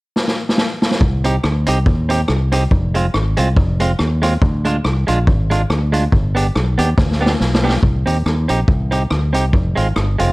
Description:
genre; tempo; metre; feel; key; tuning
ska; 141 BPM; 4/4; swing 56% on 8ths; C minor; A4 = 443 Hz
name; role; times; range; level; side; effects
street-band drum kit; drums; 0.2-10.3 s; hi-hat, kick drum, rim click, snare drum; -18 LUFS; equal; slapback echo
fingered electric bass; bass; 1.0-10.3 s; F1 to Eb2; -17 LUFS; equal; none
clean electric guitar; accompaniment; 1.2-10.3 s; Ab3 to G4; -20 LUFS; right 2 dB; none
room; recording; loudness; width
little or no reverb; dark, warm production; -14 LUFS; side -22 dB against mid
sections
0.0-1.0 A section; 1.0-7.8 B section; 7.8-10.3 C section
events
drum fill 0.2-1.0, 7.0-7.8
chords
0.0 N.C.; 1.0 Cm; 2.7 Fm; 4.4 Ddim; 6.1 G; 7.8 Cm; 9.5 Fm

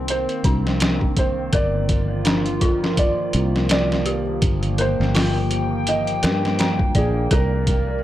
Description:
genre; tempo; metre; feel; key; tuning
trip hop; 83 BPM; 4/4; swing 57% on 16ths; unclear; A4 = 440 Hz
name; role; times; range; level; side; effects
warbly tape-like pad; sustained chords; 0.0-8.0 s; C3 to G5; -26 LUFS; equal; chorus, built-in reverb, vintage 12-bit sampler grit
dark detuned synth bell; arpeggios; 0.0-8.0 s; C4 to D5; -28 LUFS; left 3 dB; chorus, dub echo
fingered electric bass; bass; 0.0-8.0 s; G1 to G2; -23 LUFS; equal; none
felt-muted upright piano; melody; 0.1-8.0 s; Ab4 to Eb5; -26 LUFS; right 2 dB; dub echo
trip hop sampler-style drum kit; drums; 0.1-7.9 s; hi-hat, kick drum, snare drum; -21 LUFS; equal; overdrive
room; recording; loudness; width
little or no reverb; dry, gritty hardware recording; -18 LUFS; side -13 dB against mid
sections
0.0-8.0 A section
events
none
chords
0.0 Cm9; 1.5 Gm7; 7.3 Cm9

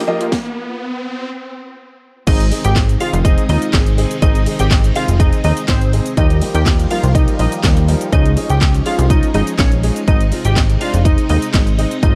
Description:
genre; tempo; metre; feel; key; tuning
dance-pop; 123 BPM; 4/4; straight; unclear; A4 = 440 Hz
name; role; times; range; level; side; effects
phased string machine; sustained chords; 0.0-12.2 s; C3 to G4; -29 LUFS; equal; ensemble chorus, phaser, sidechain pumping
riser; sound effects; 0.0-1.3 s; none; -28 LUFS; equal; none
warm concert grand piano; accompaniment; 0.1-12.2 s; F3 to Eb5; -25 LUFS; equal; sidechain pumping
house drum kit; drums; 0.2-12.1 s; crash cymbal, handclaps, hi-hat, kick drum, shaker, snare drum; -18 LUFS; equal; none
glassy wavetable pluck; melody; 2.3-12.2 s; C4 to G5; -24 LUFS; equal; chorus, sidechain pumping
plucky analog bass; bass; 2.3-12.2 s; F1 to Eb2; -18 LUFS; equal; sidechain pumping
room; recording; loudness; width
digital ambience; dark, warm production, high-pass filter; -15 LUFS; mono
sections
0.0-2.3 A section; 2.3-12.2 B section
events
build-up 0.0-2.3; drum fill 0.0-0.3; riser 0.0-2.3; filter sweep 0.0-2.3; stop 0.3-2.3; drop 2.3-12.2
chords
0.3 N.C.; 2.3 Ab; 6.2 Ebadd9; 8.1 Dbadd9; 10.1 Ab

